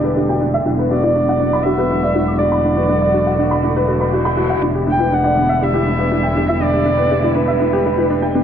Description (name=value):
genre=electronica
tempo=121 BPM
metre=4/4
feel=straight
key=E minor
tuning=A4 = 445 Hz
part: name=rich violin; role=melody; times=0.0-8.3 s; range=B4 to G5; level=-20 LUFS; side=right 2 dB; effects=none
part: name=clear symphonic string section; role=sustained chords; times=0.0-8.4 s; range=D3 to F#4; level=-23 LUFS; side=left 1 dB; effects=none
part: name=clear upright piano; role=riff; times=0.0-8.4 s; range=D4 to D6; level=-18 LUFS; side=equal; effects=digital delay
part: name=bright studio double bass section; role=bass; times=0.0-8.4 s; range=E1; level=-21 LUFS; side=equal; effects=none
part: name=warbly dusty pluck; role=arpeggios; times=0.2-8.4 s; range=B3 to E5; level=-24 LUFS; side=left 3 dB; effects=wide subtle chorus, digital delay
part: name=reverse cymbal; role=sound effects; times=3.9-4.6 s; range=none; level=-27 LUFS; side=left 6 dB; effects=none
room=moderate echo chamber reverb, RT60 1.3 s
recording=low-pass filter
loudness=-14 LUFS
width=side -8 dB against mid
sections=0.0-8.4 A section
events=filter sweep on synth arpeggio sound 0.0-8.4; filter sweep 0.0-8.4; reverse cymbal 3.9-4.6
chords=0.0 Em7; 0.7 Bm/E; 4.6 Em7